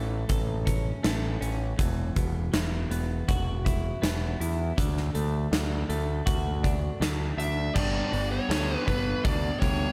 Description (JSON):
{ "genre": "quiet-loud alternative rock", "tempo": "80 BPM", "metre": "4/4", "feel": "straight", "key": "unclear", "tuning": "A4 = 442 Hz", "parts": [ { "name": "twelve-string electric guitar", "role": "arpeggios", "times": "0.0-9.9 s", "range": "E2 to A4", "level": "-37 LUFS", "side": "equal", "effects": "none" }, { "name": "growling picked electric bass", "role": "bass", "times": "0.0-9.9 s", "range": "E1 to E2", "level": "-32 LUFS", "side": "equal", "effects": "overdrive" }, { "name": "huge arena drum kit", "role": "drums", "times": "0.3-9.8 s", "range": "crash cymbal, hi-hat, kick drum, snare drum", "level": "-32 LUFS", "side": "equal", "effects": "none" }, { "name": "smooth overdriven lead guitar", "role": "melody", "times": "7.4-9.9 s", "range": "B4 to E5", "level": "-34 LUFS", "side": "equal", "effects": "none" }, { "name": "thick fuzz guitar", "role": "riff", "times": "7.8-9.9 s", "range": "G3 to D4", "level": "-34 LUFS", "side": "equal", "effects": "distortion" } ], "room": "light reverb", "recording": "none", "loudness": "-28 LUFS", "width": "mono", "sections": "0.0-7.8 A section; 7.8-9.9 B section", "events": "none", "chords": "0.0 A; 1.8 Esus2; 4.8 D; 7.8 Gadd9" }